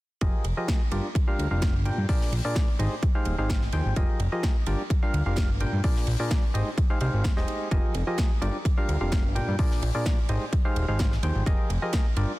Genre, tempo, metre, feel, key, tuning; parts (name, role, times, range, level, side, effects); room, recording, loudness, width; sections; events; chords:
piano house; 128 BPM; 4/4; straight; F dorian; A4 = 440 Hz
percussive organ stab; riff; 0.2-12.3 s; Bb2 to G5; -30 LUFS; equal; chorus, sidechain pumping, digital delay
fat analog bass; bass; 0.2-12.3 s; Eb1 to G2; -26 LUFS; equal; sidechain pumping
electronic kick drum; drums; 0.2-12.0 s; -25 LUFS; equal; overdrive
modern studio drum kit; drums; 0.2-12.3 s; hi-hat, ride cymbal, snare drum; -40 LUFS; right 2 dB; high-pass filter on cymbals, high-pass filter on hats, high-pass filter on snare, high-pass filter on room
electronic snare drum; drums; 0.7-12.0 s; -36 LUFS; equal
studio ambience; dense, heavily limited modern master; -23 LUFS; side -18 dB against mid
0.2-12.4 A section
0.2 Fm11; 0.9 Gm7; 2.1 Bb7; 2.8 Abmaj7; 4.0 Fm11; 4.7 Gm7; 5.8 Bb7; 6.5 Abmaj7; 7.7 Fm11; 8.4 Gm7; 9.6 Bb7; 10.3 Abmaj7; 11.5 Fm11